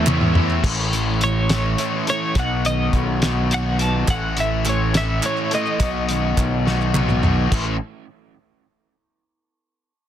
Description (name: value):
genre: indie rock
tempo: 70 BPM (dotted quarters)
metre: 6/8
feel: straight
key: A lydian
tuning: A4 = 438 Hz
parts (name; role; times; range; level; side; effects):
- twelve-string electric guitar; melody; 0.0-6.6 s; C#5 to A5; -24 LUFS; equal; tremolo
- tonewheel organ; sustained chords; 0.0-0.6 s; C#5 to E6; -30 LUFS; right 3 dB; slow rotary speaker, chorus vibrato
- overdriven electric guitar; riff; 0.0-7.8 s; A2 to A4; -24 LUFS; left 8 dB; none
- overdriven semi-hollow guitar; riff; 0.0-7.8 s; A2 to F#4; -26 LUFS; right 10 dB; analog chorus
- growling fingered electric bass; bass; 0.0-7.8 s; A1 to E2; -22 LUFS; equal; overdrive
- cloth-damped thuddy drum kit; drums; 0.1-7.7 s; crash cymbal, hi-hat, kick drum, snare drum, toms; -22 LUFS; equal; none
- group handclap; percussion; 0.1-0.6, 4.1-7.8 s; none; -28 LUFS; right 4 dB; none
room: little or no reverb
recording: dense, heavily limited modern master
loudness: -17 LUFS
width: side -10 dB against mid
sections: 0.6-7.5 A section; 7.5-9.2 B section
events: drum fill 0.0-0.6, 6.7-7.5; clean electric guitar solo 0.6-7.5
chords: 0.0 A; 2.4 B; 4.1 A; 5.8 B; 7.5 A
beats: | 0.64 1.50 | 2.36 3.22 | 4.08 4.94 | 5.80 6.66 | 7.52